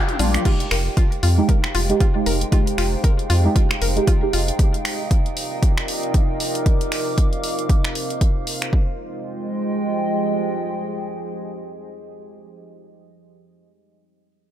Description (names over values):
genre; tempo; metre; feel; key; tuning
deep house; 116 BPM; 4/4; swing 58% on 16ths; F dorian; A4 = 440 Hz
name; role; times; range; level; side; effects
deep dark ambient pad; sustained chords; 0.0-12.1 s; F3 to Eb5; -30 LUFS; right 1 dB; chorus, built-in reverb, sidechain pumping
deep mellow chord stab; stabs; 0.0-4.4 s; G3 to G4; -24 LUFS; right 2 dB; chorus, phaser, vintage 12-bit sampler grit, sidechain pumping, dub echo
warbly tape-like pad; texture; 0.0-12.3 s; C3 to D6; -27 LUFS; right 1 dB; chorus, built-in reverb, sidechain pumping
deep house drum kit; drums; 0.1-8.7 s; crash cymbal, finger snaps, hi-hat, shaker, toms; -26 LUFS; equal; none
mallet-like synth pluck; arpeggios; 0.2-4.4 s; F4 to Bb4; -30 LUFS; left 6 dB; chorus, sidechain pumping, dub echo
round analog bass; bass; 0.2-4.5 s; F1 to F2; -19 LUFS; equal; sidechain pumping
electronic kick drum; drums; 0.5-8.8 s; none; -18 LUFS; equal; none
room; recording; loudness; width
light reverb; none; -18 LUFS; side -11 dB against mid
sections
0.5-8.7 A section; 8.7-12.9 B section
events
band accent 0.0; drum fill 0.1-0.5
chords
0.5 Fm9; 4.6 Cm11; 8.7 Fm9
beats
| 0.45 0.97 1.49 2.00 | 2.52 3.04 3.56 4.07 | 4.59 5.11 5.62 6.14 | 6.66 7.18 7.69 8.21 | 8.73 9.25 9.76 10.28 | 10.80 11.31 11.83